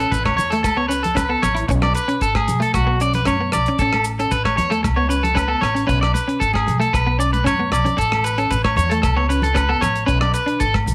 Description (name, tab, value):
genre	highlife guitar band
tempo	114 BPM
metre	4/4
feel	straight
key	A major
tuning	A4 = 439 Hz
part	clean electric guitar	accompaniment	0.0-10.6 s	A3 to E4	-27 LUFS	equal	ensemble chorus
part	electric guitar at the edge of break-up	arpeggios	0.0-10.7 s	F#4 to D5	-22 LUFS	equal	slapback echo
part	upright bass	bass	0.0-10.9 s	G#1 to F#2	-24 LUFS	equal	none
part	maracas	percussion	0.0-10.9 s	none	-38 LUFS	equal	none
part	damped 70s drum kit	drums	0.1-10.9 s	hi-hat, kick drum, rim click	-28 LUFS	equal	none
part	agogo bells	percussion	0.3-10.9 s	none	-32 LUFS	equal	none
part	congas	percussion	0.3-10.9 s	none	-31 LUFS	equal	none
room	light reverb, studio reverb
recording	none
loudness	-19 LUFS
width	mono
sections	0.0-10.9 A section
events	drum fill 7.3-8.0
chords	0.0 A; 1.7 Bmadd9; 3.8 A; 5.9 Bmadd9; 8.0 A; 10.1 Bmadd9